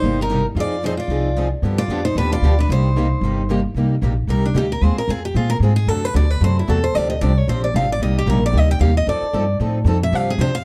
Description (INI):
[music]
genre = acoustic string swing (jazz manouche)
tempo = 226 BPM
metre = 4/4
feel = swing 56% on 8ths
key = C minor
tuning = A4 = 441 Hz
[part]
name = picked steel-string acoustic guitar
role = melody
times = 0.0-10.6 s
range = D4 to G5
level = -25 LUFS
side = equal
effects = none
[part]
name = picked steel-string acoustic guitar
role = second line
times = 0.0-3.6 s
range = D4 to F4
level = -29 LUFS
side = equal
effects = none
[part]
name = picked steel-string acoustic guitar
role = accompaniment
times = 0.0-10.5 s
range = C3 to A4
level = -27 LUFS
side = equal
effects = none
[part]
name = picked steel-string acoustic guitar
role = accompaniment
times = 0.0-10.5 s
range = C3 to A4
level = -30 LUFS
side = equal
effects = none
[part]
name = upright bass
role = bass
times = 0.0-10.6 s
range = G1 to Bb2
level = -21 LUFS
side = equal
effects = none
[sound]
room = light reverb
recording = dark, warm production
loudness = -18 LUFS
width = mono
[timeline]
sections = 0.0-3.8 A section; 3.8-10.6 B section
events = steel-string acoustic guitar solo 3.8-10.6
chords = 0.0 Cm7; 0.6 Fm7; 1.6 G7; 2.7 Cm7; 4.8 Ab69; 5.9 D7; 6.9 G7sus4; 8.0 Cm7; 9.1 F7; 10.1 G7sus4